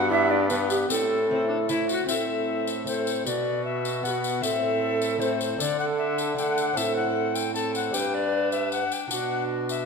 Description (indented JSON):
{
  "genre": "classical, renaissance-style consort dance",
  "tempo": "153 BPM",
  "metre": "3/4",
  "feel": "straight",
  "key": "A dorian",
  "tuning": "A4 = 441 Hz",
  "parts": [
    { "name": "tenor recorder", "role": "melody", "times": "0.0-9.9 s", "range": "D4 to A5", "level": "-28 LUFS", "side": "left 6 dB", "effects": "none" },
    { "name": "mellow tenor recorder", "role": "second line", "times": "0.0-9.9 s", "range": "F#4 to F#5", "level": "-29 LUFS", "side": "right 6 dB", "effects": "none" },
    { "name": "lute", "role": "accompaniment", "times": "0.0-9.9 s", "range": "G2 to C5", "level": "-32 LUFS", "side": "equal", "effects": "none" },
    { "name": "rich viola", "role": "accompaniment", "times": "0.0-9.9 s", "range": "B3 to F#4", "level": "-32 LUFS", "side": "left 3 dB", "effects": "none" },
    { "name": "brilliant trombone", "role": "bass", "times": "0.0-9.9 s", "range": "G2 to D3", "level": "-31 LUFS", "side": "right 1 dB", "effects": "none" },
    { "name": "tambourine", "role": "percussion", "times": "0.5-9.9 s", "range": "none", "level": "-34 LUFS", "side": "left 6 dB", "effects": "none" }
  ],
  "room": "moderate recital hall reverb, RT60 1.7 s",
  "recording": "none",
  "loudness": "-23 LUFS",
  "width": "side -5 dB against mid",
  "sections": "0.0-2.1 A section; 2.1-9.9 B section",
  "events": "none",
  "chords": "0.0 G; 0.9 Am; 3.3 Bm; 4.4 Am; 5.6 D; 6.8 Am; 7.9 G; 9.1 Bm",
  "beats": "0.10 0.49 | 0.89 1.29 1.69 | 2.09 2.48 2.87 | 3.26 3.65 4.04 | 4.43 4.82 5.21 | 5.60 5.99 6.38 | 6.77 7.16 7.55 | 7.94 8.33 8.72 | 9.11 9.50"
}